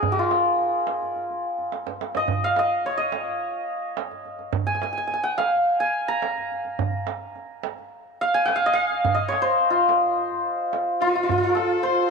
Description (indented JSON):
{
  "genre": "Persian modal ensemble",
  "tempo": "107 BPM",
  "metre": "4/4",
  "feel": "straight",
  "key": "F dastgah shur",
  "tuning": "A4 = 440 Hz",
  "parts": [
    { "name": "santur", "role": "melody", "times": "0.0-12.1 s", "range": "Eb4 to Bb5", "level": "-22 LUFS", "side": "equal", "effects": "none" },
    { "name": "tombak", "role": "percussion", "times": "0.0-12.1 s", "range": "none", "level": "-29 LUFS", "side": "right 7 dB", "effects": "none" },
    { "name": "rich kamancheh", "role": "second line", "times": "11.0-12.1 s", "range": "F4 to C5", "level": "-30 LUFS", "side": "left 9 dB", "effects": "none" }
  ],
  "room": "moderate echo chamber reverb, RT60 2.6 s",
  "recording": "1960s-style stereo with parts hard left and right",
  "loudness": "-21 LUFS",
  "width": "side -4 dB against mid",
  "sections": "0.0-11.3 A section",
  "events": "drum fill 1.7-2.3",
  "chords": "none"
}